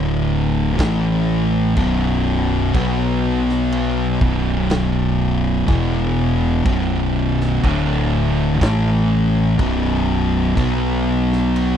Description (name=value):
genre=stoner and doom metal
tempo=61 BPM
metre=4/4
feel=straight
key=B minor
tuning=A4 = 441 Hz
part: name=thick fuzz guitar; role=riff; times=0.0-11.8 s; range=B1 to B3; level=-20 LUFS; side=left 9 dB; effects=distortion
part: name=thick fuzz guitar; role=riff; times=0.0-11.8 s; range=B1 to B3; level=-21 LUFS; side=right 9 dB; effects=distortion
part: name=overdriven fingered electric bass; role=bass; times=0.0-11.8 s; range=B0 to B1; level=-22 LUFS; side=equal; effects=tube saturation
part: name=raw garage drum kit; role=drums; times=0.8-11.8 s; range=crash cymbal, kick drum, snare drum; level=-23 LUFS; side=equal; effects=none
room=little or no reverb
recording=dry, close 1970s-style studio recording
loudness=-16 LUFS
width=side -9 dB against mid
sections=0.0-11.8 A section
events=none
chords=0.0 D5; 0.8 A5; 1.8 B5; 5.7 E5; 6.7 B5; 7.6 D5; 8.6 A5; 9.6 B5